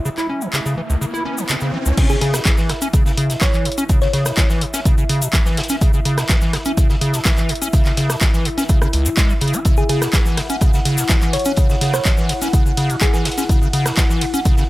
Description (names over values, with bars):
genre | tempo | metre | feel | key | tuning
acid house | 125 BPM | 4/4 | straight | C# minor | A4 = 440 Hz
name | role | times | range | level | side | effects
dark analog pad | sustained chords | 0.0-14.7 s | E4 to F#5 | -27 LUFS | left 2 dB | chorus, phaser, sidechain pumping
riser | sound effects | 0.1-2.0 s | none | -28 LUFS | right 1 dB | none
acid bass, square | riff | 0.1-14.6 s | C#2 to E4 | -21 LUFS | equal | tube saturation, analog chorus, sidechain pumping
tube shaker | percussion | 0.1-14.7 s | none | -28 LUFS | left 3 dB | none
punchy analog drum machine | drums | 0.2-14.6 s | crash cymbal, handclaps, hi-hat, ride cymbal, rim click | -23 LUFS | equal | none
crunchy breakbeat drum kit | drums | 2.0-14.7 s | hi-hat, snare drum | -31 LUFS | equal | none
electronic kick drum | drums | 2.0-14.6 s | none | -16 LUFS | equal | none
thumb-piano-like synth pluck | melody | 2.1-4.2, 9.8-13.2 s | G#4 to C#5 | -25 LUFS | equal | chorus, phaser, analog delay
room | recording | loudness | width
little or no reverb | none | -15 LUFS | side -18 dB against mid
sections
0.0-2.0 A section; 2.0-14.7 B section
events
riser 0.1-2.0; drop 2.0-14.7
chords
0.0 C#m